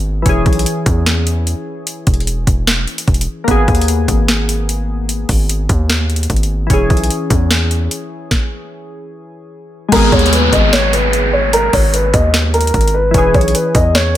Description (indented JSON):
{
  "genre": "hip hop, trap",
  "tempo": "149 BPM",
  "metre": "4/4",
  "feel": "half-time",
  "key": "G# minor",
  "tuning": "A4 = 440 Hz",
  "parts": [
    { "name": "glassy digital keys", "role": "accompaniment", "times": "0.0-14.2 s", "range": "E3 to G#4", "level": "-20 LUFS", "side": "left 2 dB", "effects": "chorus, low-pass filter" },
    { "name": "hard-hitting 808-style bass", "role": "bass", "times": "0.0-14.2 s", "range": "E1 to E2", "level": "-16 LUFS", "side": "equal", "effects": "none" },
    { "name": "trap drum kit", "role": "drums", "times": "0.3-14.0 s", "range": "crash cymbal, hi-hat, kick drum, snare drum", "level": "-15 LUFS", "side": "equal", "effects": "none" },
    { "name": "dark baby grand piano", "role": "melody", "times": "9.9-14.2 s", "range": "A#4 to D#5", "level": "-15 LUFS", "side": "equal", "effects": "low-pass filter, ping-pong delay" },
    { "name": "downlifter", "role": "sound effects", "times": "9.9-13.1 s", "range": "none", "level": "-19 LUFS", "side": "equal", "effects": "none" }
  ],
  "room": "little or no reverb",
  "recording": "none",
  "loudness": "-12 LUFS",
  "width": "side -13 dB against mid",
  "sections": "0.0-9.9 A section; 9.9-14.2 B section",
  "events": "stop 8.3-9.9",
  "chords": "0.3 E6; 3.5 G#madd9; 6.7 E6; 9.9 G#madd9; 13.1 E6"
}